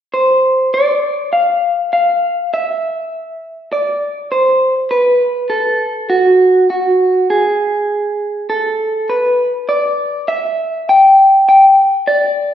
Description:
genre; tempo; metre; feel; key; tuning
rock; 100 BPM; 4/4; straight; D dorian; A4 = 439 Hz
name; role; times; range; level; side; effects
electric guitar through a small old amp; melody; 0.1-12.5 s; F#4 to G5; -11 LUFS; equal; none
room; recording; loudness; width
wet recital hall reverb, RT60 1.5 s; recorded in a church or concert hall; -11 LUFS; side -10 dB against mid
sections
0.1-12.5 A section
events
none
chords
none

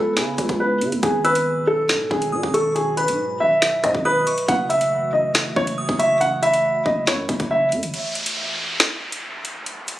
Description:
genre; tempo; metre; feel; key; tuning
hip hop, drill; 139 BPM; 4/4; half-time; unclear; A4 = 440 Hz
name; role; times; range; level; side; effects
dark baby grand piano; melody; 0.0-7.7 s; G#4 to F#5; -19 LUFS; equal; tape echo
delicate synth tine bell; second line; 0.0-7.9 s; B5 to E6; -29 LUFS; equal; chorus, phaser, tremolo, tape echo
warbly tape-like pad; sustained chords; 0.0-7.9 s; B2 to F#4; -33 LUFS; right 2 dB; chorus, built-in reverb
growling 808-style bass; bass; 0.0-7.9 s; F#1 to C#3; -27 LUFS; equal; none
drill drum kit; drums; 0.2-10.0 s; finger snaps, hi-hat, kick drum, rim click, snare drum; -22 LUFS; equal; none
downlifter; sound effects; 7.9-10.0 s; none; -26 LUFS; equal; none
room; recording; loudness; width
light reverb; recorded on a phone in the room, studio ambience, compression; -18 LUFS; side -14 dB against mid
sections
0.0-7.9 A section; 7.9-10.0 B section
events
break 7.9-10.0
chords
0.0 C#m7; 1.0 G#m7; 4.5 F#m7; 7.9 N.C.

